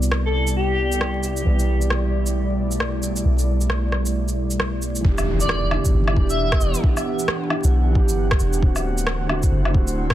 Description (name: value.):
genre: future garage.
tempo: 134 BPM.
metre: 4/4.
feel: swing 61% on 16ths.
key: E minor.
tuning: A4 = 440 Hz.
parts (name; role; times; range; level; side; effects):
felt-muted upright piano; accompaniment; 0.0-10.1 s; D3 to G4; -28 LUFS; right 3 dB; sidechain pumping, digital delay.
airy breathy pad; sustained chords; 0.0-10.1 s; B2 to F#5; -26 LUFS; right 1 dB; chorus, sidechain pumping.
soft 808-style bass; bass; 0.0-10.1 s; D1 to C2; -22 LUFS; equal; sidechain pumping.
electronic shaker, rim click and woodblock; drums; 0.0-10.1 s; none; -26 LUFS; equal; soft clipping on snare.
airy dreamy lead; melody; 0.3-1.2, 5.4-6.7 s; G4 to E5; -27 LUFS; left 2 dB; chorus, tape echo.
electronic kick drum; drums; 5.0-10.1 s; none; -18 LUFS; equal; none.
impact; sound effects; 5.0-6.8 s; none; -30 LUFS; equal; none.
room: light reverb.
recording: dense, heavily limited modern master, vinyl crackle.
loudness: -18 LUFS.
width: side -13 dB against mid.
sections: 0.0-5.0 A section; 5.0-10.1 B section.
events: impact 5.0-6.8.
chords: 0.0 Cmaj9; 1.5 G6/B; 5.0 Em7; 8.6 D7.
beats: 0.12 0.57 1.01 | 1.46 1.91 2.36 2.81 | 3.25 3.70 4.15 4.60 | 5.04 5.49 5.94 6.39 | 6.83 7.28 7.73 8.18 | 8.62 9.07 9.52 9.97.